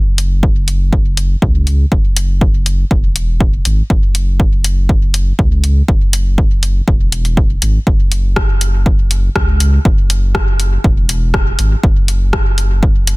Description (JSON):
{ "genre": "dub techno", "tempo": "121 BPM", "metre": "4/4", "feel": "straight", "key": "unclear", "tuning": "A4 = 440 Hz", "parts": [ { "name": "soft dub sub bass", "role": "bass", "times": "0.0-13.2 s", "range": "E1 to C#2", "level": "-14 LUFS", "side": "equal", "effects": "sidechain pumping" }, { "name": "punchy analog drum machine", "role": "drums", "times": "0.2-13.2 s", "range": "hi-hat, rim click", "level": "-19 LUFS", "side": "left 1 dB", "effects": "soft clipping on snare, dub echo" }, { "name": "electronic kick drum", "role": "drums", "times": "0.4-12.9 s", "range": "none", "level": "-13 LUFS", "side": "equal", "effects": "none" } ], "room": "digital ambience", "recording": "dense, heavily limited modern master", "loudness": "-11 LUFS", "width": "side -24 dB against mid", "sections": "0.0-13.2 A section", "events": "none", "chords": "none", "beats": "0.43 0.93 1.42 | 1.92 2.41 2.91 3.40 | 3.90 4.40 4.89 5.39 | 5.88 6.38 6.88 7.37 | 7.87 8.36 8.86 9.36 | 9.85 10.35 10.84 11.34 | 11.84 12.33 12.83" }